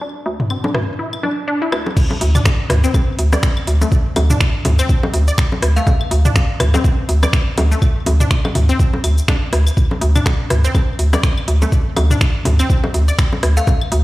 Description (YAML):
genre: minimal techno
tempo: 123 BPM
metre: 4/4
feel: swing 57% on 16ths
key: D minor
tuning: A4 = 440 Hz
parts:
  - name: resonant blip pluck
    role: riff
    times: 0.0-13.6 s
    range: A3 to D5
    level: -24 LUFS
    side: left 1 dB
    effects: chorus, sidechain pumping, digital delay
  - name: hollow knocking FM bass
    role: bass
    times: 0.3-14.0 s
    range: D1 to D2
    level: -14 LUFS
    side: equal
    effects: sidechain pumping, high-pass filter
  - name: garage drum kit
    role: percussion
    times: 0.4-13.9 s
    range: bongos, claves, rim click, toms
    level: -21 LUFS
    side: left 1 dB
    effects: overdrive, digital delay
  - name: electronic kick drum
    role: drums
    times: 2.0-13.8 s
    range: none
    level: -15 LUFS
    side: equal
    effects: none
  - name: garage drum kit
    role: drums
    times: 2.0-14.0 s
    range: crash cymbal, finger snaps, hi-hat, shaker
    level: -25 LUFS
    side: equal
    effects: none
  - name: glassy synth bell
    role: melody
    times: 5.8-6.4, 13.6-14.0 s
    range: F5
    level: -26 LUFS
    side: left 2 dB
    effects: chorus, phaser, digital delay
room: light reverb, digital ambience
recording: played on a big sound system in a bare room, large studio reverb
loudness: -13 LUFS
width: side -18 dB against mid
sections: 0.0-2.0 A section; 2.0-14.0 B section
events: filter sweep on synth pluck 0.0-2.0; drop 2.0-14.0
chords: none